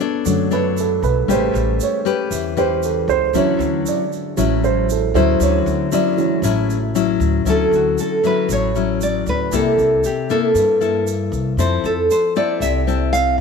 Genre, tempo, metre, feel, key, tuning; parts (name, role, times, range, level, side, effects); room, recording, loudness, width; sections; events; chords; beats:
bossa nova; 117 BPM; 4/4; straight; D major; A4 = 440 Hz
dark baby grand piano; accompaniment; 0.0-7.5 s; C#3 to D5; -20 LUFS; right 10 dB
nylon-string guitar; accompaniment; 0.0-13.4 s; G2 to C#5; -20 LUFS; left 10 dB
egg shaker; percussion; 0.0-13.4 s; -34 LUFS; right 14 dB
upright bass; bass; 0.3-13.4 s; A1 to G2; -22 LUFS; equal
nylon-string guitar; melody; 7.5-13.4 s; F#4 to F5; -18 LUFS; right 1 dB
moderate echo chamber reverb, RT60 1.9 s; 1960s-style stereo with parts hard left and right; -15 LUFS; side -5 dB against mid
0.0-7.5 A section; 7.5-13.4 B section
grand piano solo 0.0-7.5
0.0 Bm9; 1.3 A9; 3.3 Dmaj9; 9.5 C6; 11.6 Fmaj7
0.26 0.77 | 1.29 1.80 2.31 2.83 | 3.34 3.86 4.37 4.88 | 5.40 5.91 6.43 6.94 | 7.46 7.97 8.49 9.00 | 9.52 10.03 10.55 11.06 | 11.58 12.10 12.61 13.13